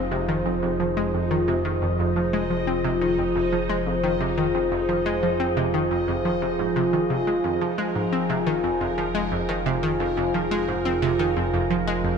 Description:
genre	ambient, sequencer-driven space music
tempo	88 BPM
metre	4/4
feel	straight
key	F minor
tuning	A4 = 440 Hz
part	sweeping resonant pad	sustained chords	0.0-12.2 s	F3 to C5	-24 LUFS	equal	chorus, phaser
part	analog pluck	riff	0.0-12.1 s	F2 to C4	-26 LUFS	equal	chorus, tape echo
part	fat analog bass	bass	0.0-12.2 s	F1	-32 LUFS	equal	none
part	bubbling stepped-filter texture	texture	0.0-12.2 s	Eb4 to Eb5	-33 LUFS	right 3 dB	chorus, built-in reverb
room	wet plate reverb, RT60 3.1 s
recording	dreamy mix soaked in reverb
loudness	-21 LUFS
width	side -6 dB against mid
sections	0.0-12.2 A section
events	none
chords	0.0 Fm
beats	0.63 1.31 | 1.99 2.67 3.35 4.04 | 4.72 5.40 6.08 6.76 | 7.44 8.13 8.81 9.49 | 10.17 10.85 11.54

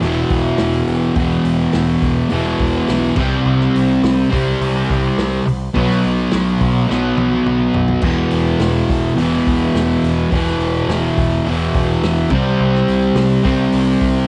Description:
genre	garage rock duo or trio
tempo	105 BPM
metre	4/4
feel	straight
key	E minor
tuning	A4 = 440 Hz
part	fuzz guitar	riff	0.0-14.3 s	E2 to C4	-17 LUFS	equal	distortion
part	growling picked electric bass	bass	0.0-14.2 s	E1 to C2	-25 LUFS	equal	overdrive
part	vintage drum kit	drums	0.0-14.1 s	crash cymbal, hi-hat, kick drum, snare drum, toms	-26 LUFS	equal	vintage 12-bit sampler grit, cassette tape
room	light reverb, studio ambience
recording	home recording on cassette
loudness	-16 LUFS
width	mono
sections	0.0-14.3 A section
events	drum fill 6.9-8.0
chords	0.0 E5; 3.2 C5; 5.8 B5; 8.0 E5; 12.3 C5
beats	0.02 0.59 | 1.17 1.74 2.31 2.89 | 3.46 4.04 4.61 5.18 | 5.75 6.33 6.90 7.47 | 8.04 8.61 9.19 9.76 | 10.32 10.89 11.46 12.03 | 12.60 13.17 13.74

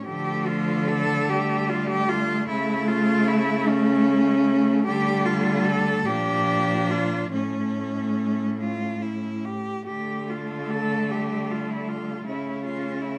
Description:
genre	classical, lyrical piece for cello ensemble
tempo	47-53 BPM (dotted quarters)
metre	6/8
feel	rubato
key	D minor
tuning	A4 = 437 Hz
part	rich cello	melody	0.0-13.2 s	C#4 to A4	-28 LUFS	equal	none
part	clear cello	second line	0.0-13.2 s	F3 to C#4	-30 LUFS	equal	none
part	clear cello	accompaniment	0.1-13.2 s	G3 to G4	-32 LUFS	equal	none
part	rich cello	bass	0.1-13.2 s	A2 to D3	-31 LUFS	equal	none
room	moderate recital hall reverb, RT60 1.6 s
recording	close, detailed microphones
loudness	-24 LUFS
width	mono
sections	0.1-13.2 A section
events	none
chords	0.1 Dm; 2.5 A/C#; 4.8 D5; 6.1 Bb; 7.3 A; 9.9 D5; 12.3 A/C#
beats	| 0.05 1.29 | 2.49 3.67 | 4.85 6.06 | 7.32 8.59 | 9.86 11.10 | 12.26

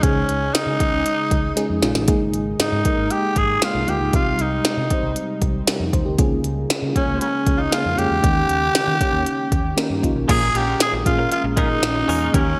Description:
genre	1980s-style pop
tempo	117 BPM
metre	4/4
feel	straight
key	unclear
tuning	A4 = 440 Hz
part	raspy tenor saxophone	melody	0.0-12.6 s	Db4 to Ab4	-24 LUFS	equal	delay
part	FM electric piano with tremolo	accompaniment	0.0-12.6 s	Ab2 to C5	-27 LUFS	equal	none
part	ethereal airy pad	sustained chords	0.0-12.6 s	C3 to Bb4	-32 LUFS	equal	ensemble chorus, built-in reverb
part	vintage muted fingered electric bass	bass	0.0-12.5 s	Ab1 to Eb3	-28 LUFS	equal	none
part	minimal click drum kit	drums	0.0-12.5 s	crash cymbal, hi-hat, kick drum, snare drum	-24 LUFS	equal	overdrive, gated reverb
part	mellow synth brass	stabs	0.8-9.2 s	Eb3 to Db5	-36 LUFS	equal	chorus, delay
part	direct-recorded clean electric guitar	riff	10.3-12.5 s	Ab3 to Bb4	-31 LUFS	equal	ensemble chorus
room	moderate plate reverb, RT60 1.9 s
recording	bright 1980s-style digital production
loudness	-20 LUFS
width	mono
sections	0.0-10.3 A section; 10.3-12.6 B section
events	drum fill 1.6-2.1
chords	0.0 Dbsus2; 2.1 Absus2; 4.1 Cm; 6.2 Bbm7/Db; 8.2 Eb7; 10.3 Bbm7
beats	| 0.03 0.55 1.06 1.57 | 2.09 2.60 3.11 3.62 | 4.14 4.65 5.16 5.67 | 6.19 6.70 7.21 7.73 | 8.24 8.75 9.27 9.78 | 10.29 10.80 11.32 11.83 | 12.34

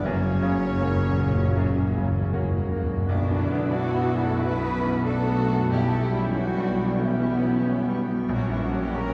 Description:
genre	classical, romantic movement for piano and orchestra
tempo	78-94 BPM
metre	4/4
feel	rubato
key	B minor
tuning	A4 = 440 Hz
part	bright concert grand piano	melody	0.0-9.1 s	A#1 to F#4	-31 LUFS	equal	none
part	warm symphonic violin section	melody	0.0-9.1 s	C#5 to D6	-44 LUFS	equal	none
part	clear clarinet	second line	0.0-9.1 s	A#3 to E4	-37 LUFS	equal	none
part	warm oboe	second line	0.0-9.1 s	C#4 to G5	-43 LUFS	equal	none
part	warm symphonic violin section	second line	0.0-9.1 s	A#3 to F#4	-39 LUFS	equal	none
part	dark symphonic viola section	accompaniment	0.0-9.1 s	C#3 to F#4	-34 LUFS	equal	none
part	mellow French horn section	sustained chords	0.0-9.1 s	C#3 to B3	-36 LUFS	equal	none
part	mellow tuba	bass	0.0-9.1 s	F#1 to B1	-33 LUFS	equal	none
part	rich symphonic double bass section	bass	0.0-9.1 s	F#1 to B1	-32 LUFS	equal	none
part	warm symphonic cello section	bass	0.0-9.1 s	E2 to B4	-34 LUFS	equal	none
part	timpani	percussion	0.0-6.7 s	F#2 to B2	-32 LUFS	equal	none
part	mellow hollow silver concert flute	second line	3.1-9.1 s	D5 to B5	-39 LUFS	equal	none
room	wet concert hall reverb, RT60 2.4 s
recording	heard from further back in the room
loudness	-24 LUFS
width	mono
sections	0.0-3.1 A section; 3.1-9.1 B section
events	timpani fill 0.0-3.1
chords	0.0 F#; 3.1 Bm; 5.7 C#m7b5/B; 8.3 F#/A#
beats	| 0.04 0.80 1.57 2.33 | 3.07 3.73 4.39 5.06 | 5.72 6.37 7.03 7.68 | 8.33 8.98

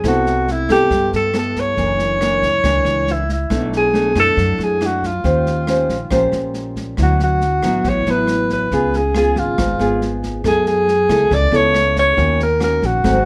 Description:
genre	bossa nova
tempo	138 BPM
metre	4/4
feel	straight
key	unclear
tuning	A4 = 439 Hz
part	breathy alto saxophone	melody	0.0-13.3 s	E4 to D5	-19 LUFS	equal	none
part	nylon-string guitar	accompaniment	0.0-13.3 s	F#2 to B#4	-22 LUFS	equal	none
part	upright bass	bass	0.0-13.2 s	F#1 to G2	-24 LUFS	equal	none
part	open jazz drum kit	drums	0.0-13.1 s	kick drum, rim click, snare drum	-29 LUFS	equal	none
room	light reverb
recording	none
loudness	-17 LUFS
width	mono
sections	0.0-13.3 A section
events	none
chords	0.0 C6; 1.8 F#7b13; 3.5 Bm7; 5.2 D#13; 7.0 D69; 8.7 C#7; 10.4 F#m11; 12.2 D#m7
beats	| 0.04 0.47 0.91 1.34 | 1.78 2.21 2.64 3.08 | 3.51 3.94 4.38 4.81 | 5.24 5.68 6.11 6.54 | 6.98 7.41 7.84 8.28 | 8.71 9.14 9.58 10.01 | 10.44 10.88 11.31 11.74 | 12.18 12.61 13.04

